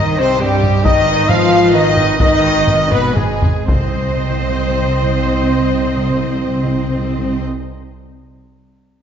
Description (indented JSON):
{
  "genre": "cinematic, epic orchestral film score",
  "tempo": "116-138 BPM",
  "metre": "3/4",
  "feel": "straight",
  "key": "C minor",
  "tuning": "A4 = 440 Hz",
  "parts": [
    { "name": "warm symphonic violin section", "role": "melody", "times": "0.0-7.4 s", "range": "G4 to F5", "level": "-26 LUFS", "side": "left 3 dB", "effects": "none" },
    { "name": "hollow small flute group", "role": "second line", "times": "0.0-7.4 s", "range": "G4 to F5", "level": "-25 LUFS", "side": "right 3 dB", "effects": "none" },
    { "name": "warm symphonic violin section", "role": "second line", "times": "0.0-7.4 s", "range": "G4 to F5", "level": "-27 LUFS", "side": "left 3 dB", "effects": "none" },
    { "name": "rich symphonic viola section", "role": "accompaniment", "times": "0.0-7.4 s", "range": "Cb5 to Eb5", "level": "-26 LUFS", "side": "right 2 dB", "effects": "none" },
    { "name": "mellow French horn section", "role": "sustained chords", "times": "0.0-7.4 s", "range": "G3 to F4", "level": "-19 LUFS", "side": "left 4 dB", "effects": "none" },
    { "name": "mellow trombone section", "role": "sustained chords", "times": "0.0-7.4 s", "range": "G2 to C4", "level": "-23 LUFS", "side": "right 3 dB", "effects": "none" },
    { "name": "clear trumpet section", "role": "stabs", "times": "0.0-7.4 s", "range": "G4 to F5", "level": "-21 LUFS", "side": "right 1 dB", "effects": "none" },
    { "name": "rich symphonic cello section", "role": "bass", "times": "0.0-7.4 s", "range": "G2 to C4", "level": "-22 LUFS", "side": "right 2 dB", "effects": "none" },
    { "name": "rich symphonic double bass section", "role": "bass", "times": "0.0-7.4 s", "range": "Ab1 to C2", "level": "-22 LUFS", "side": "right 2 dB", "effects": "none" },
    { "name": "solo taiko drums", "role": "drums", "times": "0.6-4.7 s", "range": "none", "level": "-18 LUFS", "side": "equal", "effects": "none" },
    { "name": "timpani", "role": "percussion", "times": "3.7-7.4 s", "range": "C3", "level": "-21 LUFS", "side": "equal", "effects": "none" }
  ],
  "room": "wet scoring stage reverb, RT60 1.7 s",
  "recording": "nothing above 7.6 kHz",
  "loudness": "-12 LUFS",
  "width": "side -8 dB against mid",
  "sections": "0.0-3.7 A section; 3.7-6.8 B section",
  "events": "slowing down 0.2-3.7; drum fill 2.9-3.7",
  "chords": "0.0 Cm; 0.9 Abm; 3.7 Cm"
}